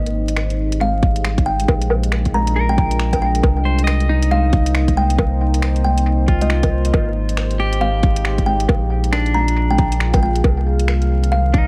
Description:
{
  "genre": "future garage",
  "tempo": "137 BPM",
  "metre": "4/4",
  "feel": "swing 61% on 16ths",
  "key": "C minor",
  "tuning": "A4 = 440 Hz",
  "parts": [
    { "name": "deep dark ambient pad", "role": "sustained chords", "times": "0.0-11.7 s", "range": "Eb3 to F5", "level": "-29 LUFS", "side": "equal", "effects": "chorus, built-in reverb, sidechain pumping" },
    { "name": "warm sub bass", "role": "bass", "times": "0.0-11.7 s", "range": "Ab1 to C2", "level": "-20 LUFS", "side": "equal", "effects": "tube saturation" },
    { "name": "garage drum kit", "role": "drums", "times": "0.1-11.6 s", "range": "finger snaps, hi-hat, woodblock", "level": "-27 LUFS", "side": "equal", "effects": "overdrive, analog delay" },
    { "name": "kalimba", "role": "melody", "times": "0.8-11.6 s", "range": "Eb5 to Bb5", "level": "-25 LUFS", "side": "equal", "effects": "analog delay" },
    { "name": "electronic kick drum", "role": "drums", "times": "1.0-11.6 s", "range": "none", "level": "-19 LUFS", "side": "equal", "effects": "overdrive" },
    { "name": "clean electric guitar", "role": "accompaniment", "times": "2.6-11.7 s", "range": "D4 to Eb5", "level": "-28 LUFS", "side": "equal", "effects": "sidechain pumping, analog delay" }
  ],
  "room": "little or no reverb",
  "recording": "echo-heavy mix, vinyl crackle",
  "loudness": "-17 LUFS",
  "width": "mono",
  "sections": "0.0-3.4 A section; 3.4-11.7 B section",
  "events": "none",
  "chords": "0.0 Abmaj7; 1.7 Bb7; 3.4 Cm7; 6.9 Abmaj7; 8.7 Bb7; 10.4 Cm7",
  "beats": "0.37 0.81 1.25 | 1.68 2.12 2.56 3.00 | 3.44 3.87 4.31 4.75 | 5.19 5.62 6.06 6.50 | 6.94 7.38 7.82 8.25 | 8.69 9.13 9.57 10.01 | 10.44 10.88 11.32"
}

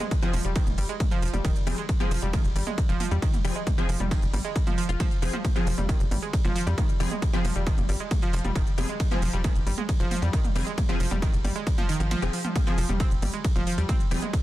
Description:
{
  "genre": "driving peak-time techno",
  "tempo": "135 BPM",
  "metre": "4/4",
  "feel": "straight",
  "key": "F minor",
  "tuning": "A4 = 440 Hz",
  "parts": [
    { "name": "analog pluck", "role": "riff", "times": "0.0-14.3 s", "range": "Eb3 to F4", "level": "-31 LUFS", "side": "right 2 dB", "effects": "chorus, tube saturation, sidechain pumping, tape echo" },
    { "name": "techno drum kit", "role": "drums", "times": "0.0-14.4 s", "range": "hi-hat, ride cymbal, toms", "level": "-35 LUFS", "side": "right 2 dB", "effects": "none" },
    { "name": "electronic kick drum", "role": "drums", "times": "0.1-14.4 s", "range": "none", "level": "-26 LUFS", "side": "equal", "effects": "none" },
    { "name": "rave stab", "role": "stabs", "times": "0.2-14.2 s", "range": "F3 to Ab4", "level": "-34 LUFS", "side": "left 3 dB", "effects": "chorus, built-in reverb, sidechain pumping, tape echo" },
    { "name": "tight sequencer bass", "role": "bass", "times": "0.3-14.2 s", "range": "Eb1 to F2", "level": "-27 LUFS", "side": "equal", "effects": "sidechain pumping" }
  ],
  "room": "digital ambience",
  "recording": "dense, heavily limited modern master",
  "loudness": "-23 LUFS",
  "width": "side -15 dB against mid",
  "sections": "0.0-14.4 A section",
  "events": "kick drops out 12.1-12.6",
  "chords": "0.0 Fm",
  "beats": "| 0.11 0.56 1.00 1.45 | 1.89 2.33 2.78 3.22 | 3.67 4.11 4.56 5.00 | 5.45 5.89 6.33 6.78 | 7.22 7.67 8.11 8.56 | 9.00 9.45 9.89 10.34 | 10.78 11.22 11.67 12.11 | 12.56 13.00 13.45 13.89 | 14.34"
}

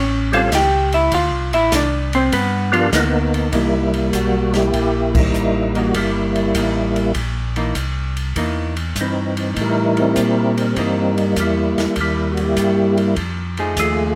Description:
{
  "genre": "soul jazz organ trio",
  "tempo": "100 BPM",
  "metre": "4/4",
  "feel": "swing 68% on 8ths",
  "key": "C mixolydian",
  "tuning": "A4 = 440 Hz",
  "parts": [
    { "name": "hollow-body jazz guitar", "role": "accompaniment", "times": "0.0-14.2 s", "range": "E3 to G5", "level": "-22 LUFS", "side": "equal", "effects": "none" },
    { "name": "mellow tonewheel organ", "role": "bass", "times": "0.0-14.2 s", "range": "G1 to Bb2", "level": "-24 LUFS", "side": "equal", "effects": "chorus vibrato, slow rotary speaker" },
    { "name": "percussive tonewheel organ", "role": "melody", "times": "0.3-14.2 s", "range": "E3 to A#4", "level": "-20 LUFS", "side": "equal", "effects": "slow rotary speaker, chorus vibrato" },
    { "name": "open jazz drum kit", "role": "drums", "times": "0.3-14.0 s", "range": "crash cymbal, hi-hat, kick drum, ride cymbal, snare drum", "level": "-27 LUFS", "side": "equal", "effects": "none" }
  ],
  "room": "moderate club reverb, RT60 0.8 s",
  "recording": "none",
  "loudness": "-18 LUFS",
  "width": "mono",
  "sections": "0.0-3.5 A section; 3.5-14.2 B section",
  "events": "hollow-body jazz guitar solo 0.0-3.5; band accent 5.0-5.3",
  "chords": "0.0 A7alt; 1.1 Dm7; 2.3 G7#9; 3.5 C7#9; 13.2 F7#9",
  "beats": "0.53 | 1.13 1.73 2.33 2.93 | 3.53 4.13 4.74 5.34 | 5.94 6.55 7.15 7.75 | 8.36 8.96 9.56 10.16 | 10.77 11.37 11.97 12.57 | 13.18 13.78"
}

